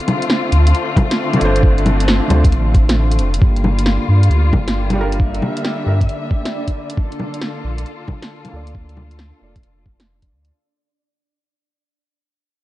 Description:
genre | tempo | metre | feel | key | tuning
future garage | 135 BPM | 4/4 | swing 65% on 16ths | G dorian | A4 = 440 Hz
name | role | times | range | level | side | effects
muted studio string section | sustained chords | 0.0-10.5 s | D3 to E5 | -22 LUFS | left 2 dB | sidechain pumping
garage drum kit | drums | 0.0-10.5 s | bongos, hi-hat, snare drum | -20 LUFS | equal | overdrive, vintage 12-bit sampler grit
warm sub bass | bass | 0.5-10.5 s | F1 to G2 | -15 LUFS | equal | sidechain pumping
electronic kick drum | drums | 1.0-10.3 s | none | -14 LUFS | equal | vintage 12-bit sampler grit
felt-muted upright piano | accompaniment | 1.4-9.5 s | D3 to D5 | -23 LUFS | right 2 dB | sidechain pumping, low-pass filter, analog delay
flickering grainy texture | texture | 3.8-10.5 s | D4 to D5 | -33 LUFS | right 2 dB | built-in reverb
room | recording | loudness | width
light reverb, digital ambience | cassette tape | -13 LUFS | side -16 dB against mid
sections
0.0-3.4 A section; 3.4-10.5 B section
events
fade-out 3.4-10.5; filter sweep on sub bass 3.4-10.5; filter sweep on felt piano 3.4-10.5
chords
0.0 Dm7; 3.4 Gm7; 7.0 Bbmaj7

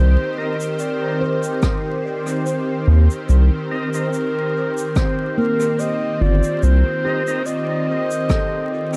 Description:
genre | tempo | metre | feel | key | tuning
ambient dub | 72 BPM | 4/4 | swing 55% on 16ths | C minor | A4 = 440 Hz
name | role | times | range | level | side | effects
dark clarinet | melody | 0.0-9.0 s | Bb4 to Eb5 | -26 LUFS | equal | tape echo
warm analog pad | sustained chords | 0.0-9.0 s | Eb3 to C5 | -26 LUFS | equal | chorus
handpan | arpeggios | 0.0-9.0 s | Bb3 to C5 | -30 LUFS | equal | tape echo
round analog bass | bass | 0.0-6.8 s | G1 to Eb2 | -14 LUFS | equal | none
tonewheel organ | stabs | 0.4-7.4 s | C4 to Bb4 | -34 LUFS | equal | slow rotary speaker, dub echo
shaker and rim click | drums | 0.6-9.0 s | none | -34 LUFS | equal | dub echo
electronic kick drum | drums | 1.6-8.5 s | none | -22 LUFS | equal | none
room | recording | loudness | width
small room ambience | echo-heavy mix, vinyl crackle | -19 LUFS | mono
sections
0.0-9.0 A section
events
none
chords
0.0 Cm7

